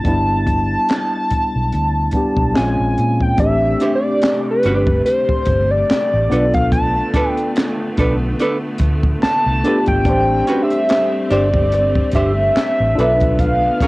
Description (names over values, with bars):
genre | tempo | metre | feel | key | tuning
R&B, neo-soul | 72 BPM | 4/4 | swing 56% on 16ths | A minor | A4 = 440 Hz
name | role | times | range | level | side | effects
hollow square lead | melody | 0.0-13.9 s | B4 to A5 | -18 LUFS | equal | chorus, cassette tape
mellow tine electric piano | accompaniment | 0.0-13.9 s | G3 to C5 | -21 LUFS | left 1 dB | overdrive, fast stereo tremolo, cassette tape
compact cocktail drum kit | drums | 0.0-13.9 s | handclaps, hi-hat, kick drum, snare drum | -20 LUFS | equal | cassette tape
vintage muted fingered electric bass | bass | 0.1-13.7 s | G1 to Bb2 | -19 LUFS | equal | transformer saturation
rich studio string section | sustained chords | 3.4-13.9 s | D3 to C4 | -27 LUFS | equal | cassette tape
archtop guitar, miked and amplified | second line | 3.8-13.9 s | D4 to C5 | -20 LUFS | right 2 dB | cassette tape
room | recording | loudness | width
light reverb | home recording on cassette | -14 LUFS | side -21 dB against mid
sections
0.0-3.4 A section; 3.4-13.9 B section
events
none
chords
0.1 Em7/G; 2.6 Bbm9; 3.4 Am7; 6.3 Bm7b5; 10.1 Am7; 13.0 Bm7b5